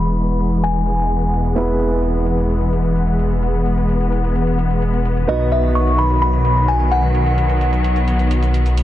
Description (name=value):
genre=EDM, festival progressive house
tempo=129 BPM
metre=4/4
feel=straight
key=E major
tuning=A4 = 439 Hz
part: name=glassy synth bell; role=melody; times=0.0-1.3, 5.3-8.7 s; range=D#5 to C#6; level=-21 LUFS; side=left 1 dB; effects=chorus, tape echo
part: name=warm grand piano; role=accompaniment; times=0.0-8.8 s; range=B3 to B4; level=-26 LUFS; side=right 2 dB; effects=tape echo
part: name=rich studio string section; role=sustained chords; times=0.0-8.8 s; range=D#3 to B3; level=-21 LUFS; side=left 2 dB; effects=none
part: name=wide detuned saw bass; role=bass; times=0.0-8.8 s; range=E1 to B1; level=-18 LUFS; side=equal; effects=chorus
part: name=electronic hi-hat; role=drums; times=0.1-8.8 s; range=none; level=-40 LUFS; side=right 6 dB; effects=low-pass filter on hats, low-pass filter on cymbals, low-pass filter on snare
room=light reverb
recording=dense, heavily limited modern master, low-pass filter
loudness=-15 LUFS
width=side -13 dB against mid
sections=0.0-8.8 A section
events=filter sweep on drum 0.0-8.8; filter sweep 0.0-8.8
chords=0.0 E; 5.3 B